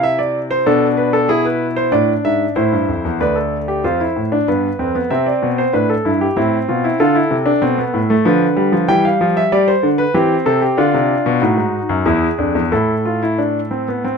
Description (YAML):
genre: classical, baroque-style 3-part fugue for grand piano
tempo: 95 BPM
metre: 3/4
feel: straight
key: D minor, A minor from 10.8 s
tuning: A4 = 439 Hz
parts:
  - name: clear grand piano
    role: solo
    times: 0.0-14.2 s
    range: D2 to G5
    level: -14 LUFS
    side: equal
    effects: none
room: light reverb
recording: minimal, uncompressed stereo recording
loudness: -14 LUFS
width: side -5 dB against mid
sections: 0.0-3.2 A section; 3.2-14.2 B section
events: none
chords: 0.0 Am/C (rootless); 0.7 Bm7; 1.3 E7/B; 2.6 Am; 3.2 Dm; 4.5 G; 5.1 C; 6.4 F/A; 7.0 Dm; 8.3 Bdim/D; 8.9 Em; 10.1 C/E; 10.8 Bdim; 11.4 D#dim; 12.1 E7; 12.7 Am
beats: 0.03 0.66 | 1.29 1.93 2.57 | 3.21 3.85 4.48 | 5.11 5.74 6.37 | 7.00 7.63 8.26 | 8.89 9.52 10.14 | 10.77 11.41 12.06 | 12.72 13.38 14.04